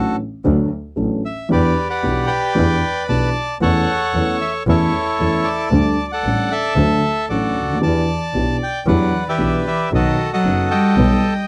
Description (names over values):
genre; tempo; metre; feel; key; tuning
tango; 114 BPM; 4/4; rubato; unclear; A4 = 440 Hz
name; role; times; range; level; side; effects
bandoneon; melody; 0.0-11.5 s; E4 to A5; -22 LUFS; equal; none
dark grand piano; accompaniment; 0.0-11.2 s; F#1 to A4; -22 LUFS; equal; none
warm double bass; bass; 0.0-11.2 s; F#1 to E2; -24 LUFS; equal; none
clear cello; second line; 8.9-11.5 s; D#3 to G3; -22 LUFS; equal; none
room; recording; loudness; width
light reverb; dry, close 1970s-style studio recording; -18 LUFS; mono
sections
0.0-11.5 A section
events
none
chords
0.0 D; 1.5 Em7; 3.6 A/E; 5.7 Dsus4; 6.8 D; 7.8 Em7; 9.9 B7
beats
0.45 0.98 | 1.51 2.03 2.56 3.09 | 3.61 4.14 4.67 5.19 | 5.72 6.24 6.77 7.29 | 7.82 8.34 8.87 9.40 | 9.92 10.45 10.98